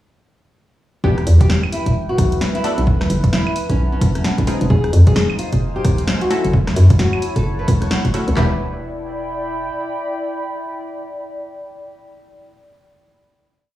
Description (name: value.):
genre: UK garage, two-step garage.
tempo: 131 BPM.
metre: 4/4.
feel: swing 60% on 16ths.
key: E dorian.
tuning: A4 = 440 Hz.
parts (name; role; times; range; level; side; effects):
nylon-string guitar; melody; 1.0-11.8 s; C#4 to C#5; -24 LUFS; left 1 dB; dub echo.
punchy chord stab; stabs; 1.0-11.8 s; G3 to A4; -25 LUFS; left 2 dB; chorus, phaser, dub echo.
hollow knocking FM bass; bass; 1.0-9.7 s; E1 to F#2; -15 LUFS; equal; none.
house drum kit; drums; 1.0-8.5 s; handclaps, kick drum, snare drum, toms; -19 LUFS; equal; none.
warbly tape-like pad; texture; 1.0-12.0 s; Eb4 to B5; -27 LUFS; equal; chorus, built-in reverb, sidechain pumping.
punchy analog drum machine; drums; 1.2-8.3 s; claves, hi-hat, rim click, snare drum; -23 LUFS; equal; none.
room: light reverb.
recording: played on a big sound system in a bare room, large studio reverb, small room reverb.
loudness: -15 LUFS.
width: side -14 dB against mid.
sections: 1.0-8.4 drop; 8.4-12.0 final chord.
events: drop 1.0-8.4; band accent 7.9.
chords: 1.0 Em; 2.6 B7(no3); 4.5 Fm7; 6.3 F#m7; 8.4 Em7.